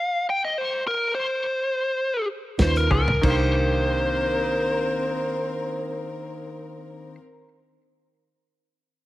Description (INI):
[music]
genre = straight-eighth soul blues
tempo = free time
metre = none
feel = none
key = C minor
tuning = A4 = 441 Hz
[part]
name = biting lead guitar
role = melody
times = 0.0-7.2 s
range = Bb4 to G5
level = -25 LUFS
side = left 1 dB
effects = overdrive
[part]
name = mellow reed electric piano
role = accompaniment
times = 2.6-7.2 s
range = D4 to Cb5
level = -30 LUFS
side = right 4 dB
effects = none
[part]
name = dark studio string section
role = sustained chords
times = 2.6-7.2 s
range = C4 to Cb5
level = -33 LUFS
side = left 2 dB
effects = none
[part]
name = vintage muted fingered electric bass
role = bass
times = 2.6-7.1 s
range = C2 to Eb2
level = -24 LUFS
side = equal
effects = none
[part]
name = warm soul drum kit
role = drums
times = 2.6-3.4 s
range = crash cymbal, hi-hat, kick drum, snare drum, toms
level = -26 LUFS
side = equal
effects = none
[part]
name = direct-recorded clean electric guitar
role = stabs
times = 2.9-7.3 s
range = Eb3 to Ab4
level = -32 LUFS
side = left 3 dB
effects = none
[sound]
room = light reverb, small room ambience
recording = none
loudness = -21 LUFS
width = side -16 dB against mid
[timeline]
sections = 0.0-3.2 A section; 3.2-8.5 B section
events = slowing down 0.0-3.2; stop 0.0-2.6; drum fill 2.9-3.2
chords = 0.0 N.C.; 2.6 Db7; 3.2 Cm9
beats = free time